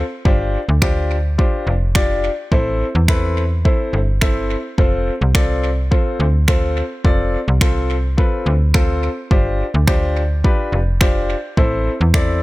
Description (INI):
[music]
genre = dance-pop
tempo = 106 BPM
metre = 4/4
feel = straight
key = unclear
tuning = A4 = 441 Hz
[part]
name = slap-like FM bass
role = bass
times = 0.0-12.4 s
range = F1 to E2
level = -18 LUFS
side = equal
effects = sidechain pumping
[part]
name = clear baby grand piano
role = accompaniment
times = 0.3-12.4 s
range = C4 to D5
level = -21 LUFS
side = left 1 dB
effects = sidechain pumping
[part]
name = deep house drum kit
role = drums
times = 0.3-12.3 s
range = finger snaps, kick drum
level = -17 LUFS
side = equal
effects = none
[sound]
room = digital ambience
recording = echo-heavy mix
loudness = -15 LUFS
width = side -19 dB against mid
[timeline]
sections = 0.0-12.4 A section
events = none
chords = 0.3 G7sus4; 2.5 Am; 4.8 F; 9.3 G7sus4; 11.6 Am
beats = | 0.25 0.82 1.39 1.95 | 2.52 3.08 3.65 4.21 | 4.78 5.35 5.91 6.48 | 7.04 7.61 8.18 8.74 | 9.31 9.88 10.44 11.01 | 11.57 12.14